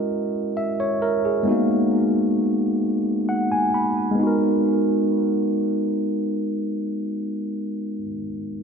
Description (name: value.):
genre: R&B.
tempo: 44 BPM (dotted quarters).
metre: 6/8.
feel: straight.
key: G# minor.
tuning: A4 = 439 Hz.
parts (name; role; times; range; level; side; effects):
barky tine electric piano; solo; 0.0-8.6 s; G#3 to B5; -20 LUFS; equal; low-pass filter, tape echo.
room: wet plate reverb, RT60 2.9 s.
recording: dreamy mix soaked in reverb.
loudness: -20 LUFS.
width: side -6 dB against mid.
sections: 0.0-4.2 A section; 4.2-6.9 B section.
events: filter sweep on tine electric piano 0.0-4.2; tine electric piano fill 2.8-4.2.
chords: 0.0 F#9; 1.5 G#m9.